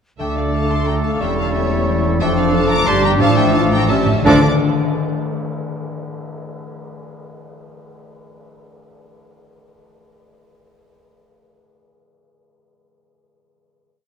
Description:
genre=classical, dramatic, fast romantic movement for symphony orchestra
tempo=177 BPM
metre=3/4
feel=uneven beats, rubato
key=D minor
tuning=A4 = 437 Hz
part: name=warm symphonic violin section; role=melody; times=0.2-4.5 s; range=E5 to D6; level=-26 LUFS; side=left 3 dB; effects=none
part: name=clear clarinet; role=second line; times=0.2-4.4 s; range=C#4 to E4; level=-26 LUFS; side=left 2 dB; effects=none
part: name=clear oboe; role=second line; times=0.2-4.4 s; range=G4 to A4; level=-28 LUFS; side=right 3 dB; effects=none
part: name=hollow concert flute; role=second line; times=0.2-4.5 s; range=A5 to E6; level=-26 LUFS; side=left 1 dB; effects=none
part: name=warm symphonic violin section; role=second line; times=0.2-4.5 s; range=C#5 to Bb5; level=-25 LUFS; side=left 2 dB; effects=none
part: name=rich symphonic viola section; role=accompaniment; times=0.2-4.5 s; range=C#4 to A4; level=-24 LUFS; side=right 2 dB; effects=none
part: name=warm bassoon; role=accompaniment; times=0.2-4.4 s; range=F3 to A3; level=-24 LUFS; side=right 2 dB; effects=none
part: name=warm French horn section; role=sustained chords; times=0.2-4.4 s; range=F3 to D4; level=-24 LUFS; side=left 4 dB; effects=none
part: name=concert harp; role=arpeggios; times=0.2-4.5 s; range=E2 to F5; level=-24 LUFS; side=left 8 dB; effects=none
part: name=warm studio double bass section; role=bass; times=0.2-4.5 s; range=E1 to D2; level=-23 LUFS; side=right 5 dB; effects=none
part: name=warm symphonic cello section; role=bass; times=0.2-4.5 s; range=D2 to D3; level=-23 LUFS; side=right 3 dB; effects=none
part: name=timpani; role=percussion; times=0.2-0.7, 3.2-4.4 s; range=A2 to D3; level=-26 LUFS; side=equal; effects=none
part: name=cymbal swell and tam-tam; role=percussion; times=2.2-5.6 s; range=none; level=-26 LUFS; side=left 4 dB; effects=none
room=moderate concert hall reverb, RT60 2.2 s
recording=dark, warm production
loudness=-14 LUFS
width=side -7 dB against mid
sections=0.2-4.3 A section; 4.3-5.3 final chord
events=timpani fill 3.9-4.3; band accent 4.3-4.6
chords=0.2 D5; 1.2 A7/E; 2.2 Dm/F; 2.9 Gm; 3.2 Dm/A; 3.9 A7; 4.3 Dm

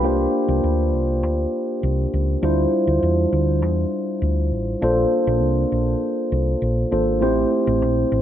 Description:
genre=polished 1980s jazz-funk pop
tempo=100 BPM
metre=4/4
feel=straight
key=unclear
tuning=A4 = 440 Hz
part: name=mellow tine electric piano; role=accompaniment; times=0.0-8.2 s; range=G3 to C5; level=-20 LUFS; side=equal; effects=wide subtle chorus
part: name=hollow-body short-scale fingered electric bass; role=bass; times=0.0-8.2 s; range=Ab1 to E2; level=-21 LUFS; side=equal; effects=none
room=wet plate reverb, RT60 3.8 s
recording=dreamy mix soaked in reverb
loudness=-18 LUFS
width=side -10 dB against mid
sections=0.0-8.2 A section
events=none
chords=0.0 C9sus4; 2.4 Dm11; 4.8 Bbmaj9; 7.2 Am7

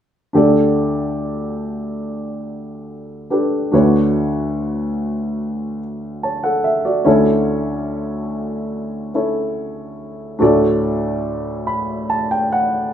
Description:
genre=pop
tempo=72 BPM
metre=4/4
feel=straight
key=unclear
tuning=A4 = 440 Hz
part: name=warm baby grand piano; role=accompaniment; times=0.3-12.9 s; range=D2 to B5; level=-17 LUFS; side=equal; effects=none
room=wet studio reverb, RT60 0.7 s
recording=rough home demo mix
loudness=-16 LUFS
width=side -9 dB against mid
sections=0.3-12.9 A section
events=grand piano fill 11.2-12.9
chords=0.3 Gsus2/D; 3.7 Bmadd9/D; 7.1 A/D; 10.4 D

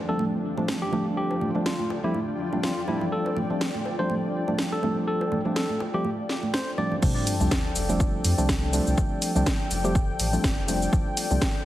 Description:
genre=deep house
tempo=123 BPM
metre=4/4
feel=swing 56% on 16ths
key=F major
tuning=A4 = 439 Hz
part: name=warm analog pad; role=sustained chords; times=0.0-11.7 s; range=F3 to G5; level=-34 LUFS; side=left 1 dB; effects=chorus, sidechain pumping
part: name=granular cloud pad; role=texture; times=0.0-7.1 s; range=F3 to G5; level=-35 LUFS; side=left 2 dB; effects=built-in reverb, sidechain pumping
part: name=overdriven tine electric piano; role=melody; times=0.1-6.9 s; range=E4 to D5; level=-32 LUFS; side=left 1 dB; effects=tape echo
part: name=percussive organ stab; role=stabs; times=0.1-11.5 s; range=F3 to G4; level=-28 LUFS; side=equal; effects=chorus, sidechain pumping, tape echo
part: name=congas and bongos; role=percussion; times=0.2-7.0 s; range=none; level=-32 LUFS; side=right 2 dB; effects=overdrive, sidechain pumping on perc
part: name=house drum kit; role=drums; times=0.7-11.5 s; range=crash cymbal, hi-hat, shaker, snare drum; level=-30 LUFS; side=equal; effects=overdrive
part: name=warm sub bass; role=bass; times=7.0-11.4 s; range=F1 to F2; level=-27 LUFS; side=equal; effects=sidechain pumping
part: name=electronic kick drum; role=drums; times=7.0-11.5 s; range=none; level=-25 LUFS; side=equal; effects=none
part: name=sub drop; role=sound effects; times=7.0-9.0 s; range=none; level=-33 LUFS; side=equal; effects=none
room=moderate echo chamber reverb, RT60 1.8 s, digital ambience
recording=heavily compressed radio sound, multiband compression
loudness=-23 LUFS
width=side -14 dB against mid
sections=0.0-7.0 A section; 7.0-11.7 B section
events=drop 7.0-11.7; impact 7.0-9.0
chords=0.0 F69

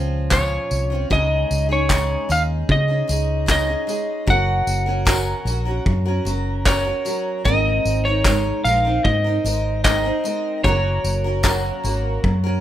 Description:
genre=acoustic pop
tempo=76 BPM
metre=4/4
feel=straight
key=Db major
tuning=A4 = 441 Hz
part: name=picked steel-string acoustic guitar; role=accompaniment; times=0.0-12.6 s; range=Bb2 to Bb4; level=-25 LUFS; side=right 1 dB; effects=double-tracked left and right
part: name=vintage muted fingered electric bass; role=bass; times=0.0-12.6 s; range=Gb1 to Db3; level=-22 LUFS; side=equal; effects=none
part: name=electric slide guitar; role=melody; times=0.3-12.2 s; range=Db5 to Gb5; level=-22 LUFS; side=equal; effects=none
part: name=loose indie drum kit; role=drums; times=0.3-12.4 s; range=handclaps, kick drum, tambourine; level=-22 LUFS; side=equal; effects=none
part: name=tambourine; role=percussion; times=0.3-11.6 s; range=none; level=-33 LUFS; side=left 3 dB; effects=none
room=light reverb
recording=rough home demo mix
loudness=-17 LUFS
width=side -12 dB against mid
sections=0.0-1.1 A section; 1.1-12.6 B section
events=none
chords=0.0 Bbmadd9; 1.1 Dbsus2; 4.3 Gb; 7.5 Abadd9; 10.6 Gb

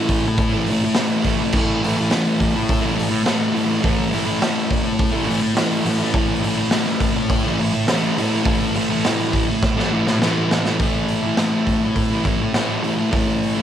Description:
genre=garage rock duo or trio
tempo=104 BPM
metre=4/4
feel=straight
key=unclear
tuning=A4 = 441 Hz
part: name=thick fuzz guitar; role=riff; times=0.0-13.6 s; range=A2 to A3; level=-19 LUFS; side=equal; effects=distortion
part: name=raw garage drum kit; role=drums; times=0.1-13.6 s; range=crash cymbal, hi-hat, kick drum, snare drum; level=-22 LUFS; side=equal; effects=cassette tape
room=moderate studio reverb, RT60 0.6 s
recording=home recording on cassette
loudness=-17 LUFS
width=side -10 dB against mid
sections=0.0-10.8 A section; 10.8-13.6 B section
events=drum fill 9.6-10.8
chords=0.0 A5

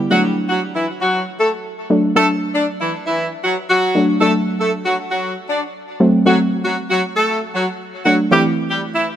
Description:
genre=pop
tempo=117 BPM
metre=4/4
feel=straight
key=unclear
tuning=A4 = 440 Hz
part: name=soft round pluck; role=accompaniment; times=0.0-9.0 s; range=E3 to E4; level=-17 LUFS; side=equal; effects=chorus
part: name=warm horn section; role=melody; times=0.1-9.1 s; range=E3 to D5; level=-17 LUFS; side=equal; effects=digital delay
room=light reverb, small room ambience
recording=none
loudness=-15 LUFS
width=side -10 dB against mid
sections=0.1-8.3 A section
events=none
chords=0.1 D; 8.3 Am

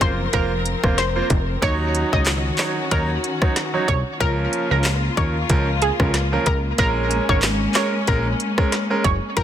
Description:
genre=dancehall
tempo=93 BPM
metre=4/4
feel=swing 56% on 16ths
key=Bb minor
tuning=A4 = 440 Hz
part: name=analog pluck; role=melody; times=0.0-9.4 s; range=Ab4 to Eb5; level=-25 LUFS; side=right 1 dB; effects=chorus, tape echo
part: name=bright concert grand piano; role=accompaniment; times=0.0-9.4 s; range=F3 to Db5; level=-25 LUFS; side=right 3 dB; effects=none
part: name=warm studio string section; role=sustained chords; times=0.0-9.4 s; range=Db3 to Bb4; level=-26 LUFS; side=left 2 dB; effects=sidechain pumping
part: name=plucky analog bass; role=bass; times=0.0-9.4 s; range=F1 to Eb2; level=-23 LUFS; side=equal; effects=none
part: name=island pop drum kit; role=drums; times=0.0-9.4 s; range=handclaps, hi-hat, kick drum, rim click, snare drum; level=-21 LUFS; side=equal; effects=none
room=light reverb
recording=dense, heavily limited modern master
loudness=-18 LUFS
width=side -10 dB against mid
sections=0.0-9.4 A section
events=none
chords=0.0 Fsus4; 1.6 Ebm7; 4.2 Db6; 6.8 Bbm7

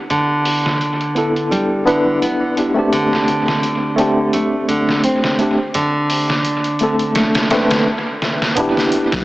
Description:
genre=trip hop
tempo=85 BPM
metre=4/4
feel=swing 56% on 16ths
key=unclear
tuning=A4 = 440 Hz
part: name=nylon-string guitar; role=arpeggios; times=0.1-7.8 s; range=D3 to C4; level=-19 LUFS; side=right 1 dB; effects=low-pass filter, tape echo
part: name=trip hop sampler-style drum kit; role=drums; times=0.1-9.2 s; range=hi-hat, kick drum, snare drum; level=-21 LUFS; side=equal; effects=low-pass filter on kick, small room ambience, low-pass filter on hats, low-pass filter on snare, dub echo
part: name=tine electric piano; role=accompaniment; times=1.2-9.2 s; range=A3 to B4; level=-17 LUFS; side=equal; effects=overdrive, fast stereo tremolo, vintage 12-bit sampler grit, tape echo
part: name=warm sub bass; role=bass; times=8.6-9.2 s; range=E1 to B1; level=-27 LUFS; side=equal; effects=none
room=moderate echo chamber reverb, RT60 2.7 s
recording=echo-heavy mix, small speaker sound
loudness=-14 LUFS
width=side -18 dB against mid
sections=0.0-8.6 A section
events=stop 7.9-8.6; drum fill 8.2-8.6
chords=0.0 D7sus4; 8.6 Em7

